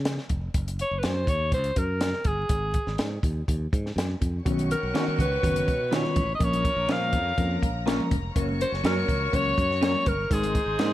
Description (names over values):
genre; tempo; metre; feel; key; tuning
uptempo 1960s-style soul; 123 BPM; 4/4; straight; unclear; A4 = 441 Hz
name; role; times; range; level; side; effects
modern bright fingered electric bass; bass; 0.0-10.9 s; F1 to Db3; -30 LUFS; equal; none
compact cocktail drum kit; drums; 0.1-10.9 s; hi-hat, kick drum, snare drum; -28 LUFS; equal; none
clear alto saxophone; melody; 0.8-10.9 s; Ab4 to F5; -27 LUFS; equal; none
warm symphonic string section; second line; 4.4-10.9 s; Bb4 to Db6; -35 LUFS; left 3 dB; none
warm horn section; second line; 4.5-10.9 s; Eb3 to Db5; -37 LUFS; equal; none
mellow tine electric piano; accompaniment; 4.5-10.9 s; Eb3 to Bb5; -30 LUFS; left 1 dB; medium stereo tremolo
congas; percussion; 4.5-10.7 s; none; -39 LUFS; right 2 dB; none
electric guitar through a small old amp; stabs; 4.9-10.9 s; Bb3 to Db5; -33 LUFS; right 2 dB; slapback echo
room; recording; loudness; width
light reverb; vinyl crackle; -23 LUFS; side -14 dB against mid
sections
0.0-10.9 A section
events
tine electric piano fill 7.4-8.4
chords
0.0 Db; 0.6 Gb; 2.5 Ab5; 4.5 Cbadd9; 6.4 Bbm; 8.4 Gb; 10.3 Abadd9